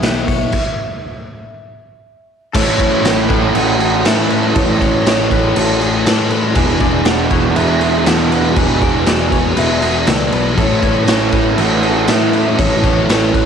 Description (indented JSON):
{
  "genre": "rock, shoegaze and dream pop",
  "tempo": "120 BPM",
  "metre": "4/4",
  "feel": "straight",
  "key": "A major",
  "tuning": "A4 = 440 Hz",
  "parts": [
    { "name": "hollow clarinet-like synth lead", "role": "melody", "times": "0.0-13.5 s", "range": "C#5 to G#5", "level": "-22 LUFS", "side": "equal", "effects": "chorus, phaser, cassette tape, analog delay" },
    { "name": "ensemble organ-string", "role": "sustained chords", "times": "0.0-13.5 s", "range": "E3 to C#5", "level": "-27 LUFS", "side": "right 1 dB", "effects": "none" },
    { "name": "direct-recorded clean electric guitar", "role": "arpeggios", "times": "0.0-13.5 s", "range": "G#4 to D5", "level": "-26 LUFS", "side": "left 8 dB", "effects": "lush chorus, analog delay" },
    { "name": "fuzz guitar", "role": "riff", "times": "0.0-13.5 s", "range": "E2 to A3", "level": "-20 LUFS", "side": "left 10 dB", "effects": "distortion, wide subtle chorus" },
    { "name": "raw garage guitar", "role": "riff", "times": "0.0-13.5 s", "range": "E2 to E4", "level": "-19 LUFS", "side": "right 9 dB", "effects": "overdrive, reverse reverb" },
    { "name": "picked electric bass", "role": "bass", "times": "0.0-13.5 s", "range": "E1 to A2", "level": "-20 LUFS", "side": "equal", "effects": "none" },
    { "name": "raw garage drum kit", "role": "drums", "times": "0.0-13.5 s", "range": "crash cymbal, hi-hat, kick drum, snare drum", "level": "-16 LUFS", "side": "equal", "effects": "cassette tape" }
  ],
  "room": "light reverb, studio ambience",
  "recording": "home recording on cassette",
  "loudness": "-12 LUFS",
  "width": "side -7 dB against mid",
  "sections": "0.0-2.5 A section; 2.5-13.5 B section",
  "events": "stop 0.5-2.5",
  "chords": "0.0 Eadd9; 2.5 A; 6.6 E7; 10.6 A",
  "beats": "0.04 | 0.54 1.04 1.54 2.05 | 2.55 3.05 3.55 4.05 | 4.55 5.05 5.56 6.06 | 6.56 7.06 7.57 8.07 | 8.57 9.07 9.57 10.08 | 10.58 11.08 11.59 12.09 | 12.59 13.10"
}